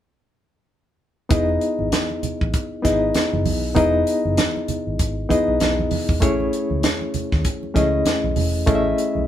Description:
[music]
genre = lush 1970s-style soul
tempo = 98 BPM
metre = 4/4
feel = swing 58% on 16ths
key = E major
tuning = A4 = 440 Hz
[part]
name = barky reed electric piano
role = accompaniment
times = 1.3-9.3 s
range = A3 to E5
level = -20 LUFS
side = left 2 dB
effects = overdrive, fast tremolo
[part]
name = vintage muted fingered electric bass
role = bass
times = 1.3-9.3 s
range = E1 to D#2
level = -25 LUFS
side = equal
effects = none
[part]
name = tight funk drum kit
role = drums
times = 1.3-9.1 s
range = hi-hat, kick drum, snare drum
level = -22 LUFS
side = right 1 dB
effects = none
[part]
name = congas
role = percussion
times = 1.3-9.3 s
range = none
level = -28 LUFS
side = right 5 dB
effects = none
[sound]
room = moderate studio reverb, RT60 0.6 s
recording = band playing live in one room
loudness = -18 LUFS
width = side -11 dB against mid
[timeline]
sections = 1.3-9.3 A section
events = none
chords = 1.3 Emaj7; 6.2 Amaj7

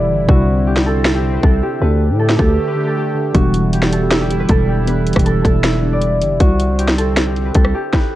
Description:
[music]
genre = hip hop, trap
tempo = 157 BPM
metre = 4/4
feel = half-time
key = unclear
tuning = A4 = 440 Hz
[part]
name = concert harp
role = melody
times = 0.0-8.2 s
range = F#4 to D5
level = -20 LUFS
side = right 1 dB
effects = low-pass filter
[part]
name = muted felt-like synth keys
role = accompaniment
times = 0.0-6.4 s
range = C3 to B4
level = -20 LUFS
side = right 1 dB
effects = chorus, phaser, low-pass filter
[part]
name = sweeping resonant pad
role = sustained chords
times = 0.0-7.9 s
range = D3 to G4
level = -24 LUFS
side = equal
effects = chorus
[part]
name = growling 808-style bass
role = bass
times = 0.0-7.7 s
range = E1 to A2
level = -17 LUFS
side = equal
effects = none
[part]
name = trap drum kit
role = drums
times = 0.3-8.0 s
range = hi-hat, kick drum, rim click, snare drum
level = -15 LUFS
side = equal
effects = overdrive, vintage 12-bit sampler grit
[sound]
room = little or no reverb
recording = worn, warbling old tape, cassette tape, warbly pitch drift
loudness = -12 LUFS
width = side -14 dB against mid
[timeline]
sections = 0.0-8.2 A section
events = break 0.0-3.3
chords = 0.3 Cadd9; 1.8 Dsus4; 3.3 Em7; 6.4 Cadd9

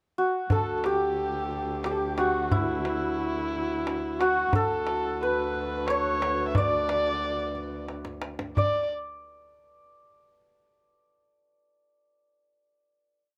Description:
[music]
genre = Persian modal ensemble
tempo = 89 BPM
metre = 3/4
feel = straight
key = D dastgah mahur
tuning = A4 = 440 Hz
[part]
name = santur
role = melody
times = 0.2-8.9 s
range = E4 to D5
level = -30 LUFS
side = equal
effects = none
[part]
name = warm kamancheh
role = second line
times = 0.5-8.9 s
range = E4 to E5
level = -33 LUFS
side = equal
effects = none
[part]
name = dark cello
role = drone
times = 0.5-8.6 s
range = D2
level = -38 LUFS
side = equal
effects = none
[part]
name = tombak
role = percussion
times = 0.5-8.9 s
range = none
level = -31 LUFS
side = equal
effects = none
[sound]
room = moderate studio reverb, RT60 0.5 s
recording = close, detailed microphones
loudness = -27 LUFS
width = mono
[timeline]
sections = 0.0-0.5 pickup bar; 0.5-8.6 A section; 8.6-10.6 final note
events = drum fill 7.9-8.6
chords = none

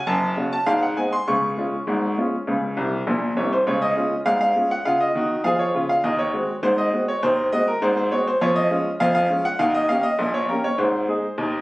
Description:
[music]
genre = ragtime piano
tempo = 101 BPM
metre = 2/4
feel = straight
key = Db major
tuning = A4 = 440 Hz
[part]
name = bright upright piano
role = solo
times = 0.0-11.6 s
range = Gb1 to Db6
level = -19 LUFS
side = equal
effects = none
[sound]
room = moderate studio reverb, RT60 0.5 s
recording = recorded on a phone in the room, club reverb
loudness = -19 LUFS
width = side -20 dB against mid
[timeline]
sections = 0.0-3.7 A section; 3.7-11.6 B section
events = upright piano fill 2.8-3.7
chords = 0.0 Gb5; 0.7 Ab; 1.3 Db; 6.0 Ab7; 8.4 Db/F; 9.6 Eb7; 10.8 Ab

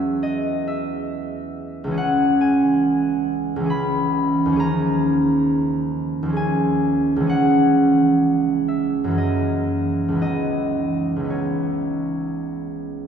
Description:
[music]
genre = classical, solo harp piece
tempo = 54-70 BPM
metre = 3/4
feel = rubato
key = C# dorian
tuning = A4 = 440 Hz
[part]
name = concert harp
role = solo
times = 0.0-13.1 s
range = C#2 to B5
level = -18 LUFS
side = right 1 dB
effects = none
[sound]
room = wet cathedral reverb, RT60 4.4 s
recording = recorded in a church or concert hall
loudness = -18 LUFS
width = side -7 dB against mid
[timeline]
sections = 0.0-13.1 A section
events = none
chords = 0.0 E69; 2.0 C#m7; 4.6 D#9sus4; 7.3 C#m; 9.2 F#9; 10.2 C#m9

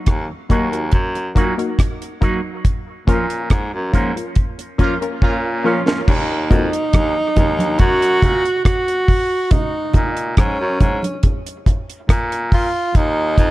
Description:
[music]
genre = dub reggae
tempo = 70 BPM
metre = 4/4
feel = straight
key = Eb minor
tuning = A4 = 440 Hz
[part]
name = breathy baritone saxophone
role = bass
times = 0.1-13.5 s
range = Eb2 to Bb2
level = -22 LUFS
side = equal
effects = none
[part]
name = deep reggae drum kit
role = drums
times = 0.1-13.5 s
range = crash cymbal, hi-hat, kick drum, rim click, snare drum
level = -16 LUFS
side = equal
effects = none
[part]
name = electric guitar with an envelope filter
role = accompaniment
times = 0.5-6.0 s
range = F3 to Gb4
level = -25 LUFS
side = right 3 dB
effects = dub echo
[part]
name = filtered dub chord stab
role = stabs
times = 0.5-6.7, 13.4-13.5 s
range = Bb3 to Bb4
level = -25 LUFS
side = left 4 dB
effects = chorus, high-pass filter, dub echo
[part]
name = warm horn section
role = second line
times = 4.8-5.8 s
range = Bb3 to F4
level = -26 LUFS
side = right 1 dB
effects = dub echo
[part]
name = breathy tenor saxophone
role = melody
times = 5.7-13.5 s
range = Db4 to Gb4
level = -19 LUFS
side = right 1 dB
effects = dub echo
[part]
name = congas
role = percussion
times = 6.1-13.5 s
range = none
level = -26 LUFS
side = right 3 dB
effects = high-pass filter on perc, dub echo
[sound]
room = light reverb, small room ambience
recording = dark, warm production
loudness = -15 LUFS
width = side -17 dB against mid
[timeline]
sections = 0.0-6.1 A section; 6.1-13.5 B section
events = band accent 2.6-6.1; drum fill 5.2-6.1; filter sweep 9.5-13.5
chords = 0.0 Ebm; 2.6 Bbm; 6.1 Ebm; 9.5 Bbm; 12.9 Ebm

